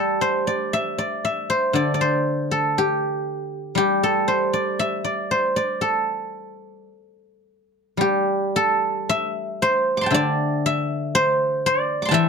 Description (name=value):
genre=chinese traditional, Chinese solo plucked strings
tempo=54-61 BPM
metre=2/4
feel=rubato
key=A yu mode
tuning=A4 = 440 Hz
part: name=guzheng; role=solo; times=0.0-12.3 s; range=D3 to D6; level=-19 LUFS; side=equal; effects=none
room=light reverb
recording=dark, warm production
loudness=-19 LUFS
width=side -5 dB against mid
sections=0.0-8.0 A section; 8.0-12.3 B section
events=none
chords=none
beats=0.71 | 1.75 2.77 | 3.78 4.79 | 5.81 6.88 | 8.00 9.09 | 10.13 11.14 | 12.14